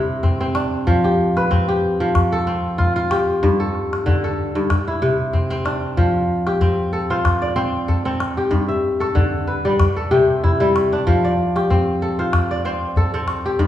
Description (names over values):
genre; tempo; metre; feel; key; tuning
west african traditional, West African string and xylophone music; 94 BPM; 4/4; swing 55% on 16ths; F lydian; A4 = 441 Hz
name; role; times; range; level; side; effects
kora; arpeggios; 0.0-13.7 s; G2 to E5; -18 LUFS; left 1 dB; none
calabash; percussion; 0.2-13.7 s; none; -21 LUFS; left 1 dB; none
room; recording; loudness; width
wet recital hall reverb, RT60 1.8 s; recorded in a church or concert hall, small room ambience; -16 LUFS; side -12 dB against mid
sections
0.0-6.0 A section; 6.0-13.7 B section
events
none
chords
0.0 C; 0.9 F; 3.4 G5; 4.7 C; 6.0 F; 8.5 G; 9.8 C; 11.1 F